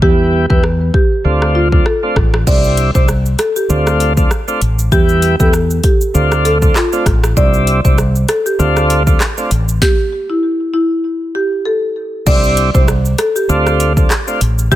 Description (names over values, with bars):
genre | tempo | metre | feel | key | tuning
dancehall | 98 BPM | 4/4 | swing 56% on 16ths | D dorian | A4 = 439 Hz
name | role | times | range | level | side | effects
marimba with medium mallets | melody | 0.0-14.8 s | E4 to D5 | -17 LUFS | equal | tape echo
tonewheel organ | accompaniment | 0.0-14.8 s | G3 to G4 | -17 LUFS | equal | slow rotary speaker
mellow fretless electric bass | bass | 0.0-14.8 s | A1 to E2 | -14 LUFS | equal | lush chorus
afro-pop drum kit | drums | 0.0-14.8 s | crash cymbal, handclaps, hi-hat, kick drum, rim click, shaker, snare drum | -14 LUFS | equal | none
room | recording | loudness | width
digital ambience | none | -11 LUFS | side -14 dB against mid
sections
0.0-2.5 A section; 2.5-12.3 B section; 12.3-14.8 C section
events
stop 9.8-12.3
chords
0.0 Em; 1.2 Dm7; 2.5 Cadd9; 3.7 Dm7; 4.9 Em; 6.1 Dm7; 7.4 Cadd9; 8.6 Dm7; 9.8 N.C.; 12.3 Cadd9; 13.5 Dm7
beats
| 0.02 0.64 1.25 1.86 | 2.47 3.08 3.70 4.31 | 4.92 5.53 6.14 6.76 | 7.37 7.98 8.59 9.21 | 9.82 10.43 11.04 11.65 | 12.27 12.88 13.49 14.10 | 14.72